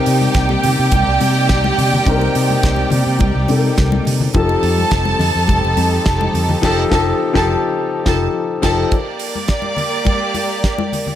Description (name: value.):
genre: disco.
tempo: 105 BPM.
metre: 4/4.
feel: straight.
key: C dorian.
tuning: A4 = 440 Hz.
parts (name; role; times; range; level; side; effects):
warm studio violin section; second line; 0.0-11.2 s; Bb3 to A5; -20 LUFS; right 2 dB; none.
dark baby grand piano; accompaniment; 0.0-8.9 s; C3 to Bb4; -19 LUFS; left 4 dB; none.
dark studio string section; sustained chords; 0.0-8.9 s; C3 to D5; -24 LUFS; right 1 dB; none.
fingered electric bass; bass; 0.1-8.8 s; F1 to C3; -18 LUFS; equal; none.
damped 70s drum kit; drums; 0.1-11.1 s; crash cymbal, hi-hat, kick drum, snare drum; -20 LUFS; right 1 dB; none.
congas; percussion; 0.2-11.2 s; none; -24 LUFS; left 5 dB; none.
room: light reverb, small room ambience.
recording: none.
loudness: -13 LUFS.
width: side -11 dB against mid.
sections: 0.0-8.9 A section; 8.9-11.2 B section.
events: band accent 6.6-8.9.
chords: 0.0 Cm7; 4.4 F9; 8.9 Bb6.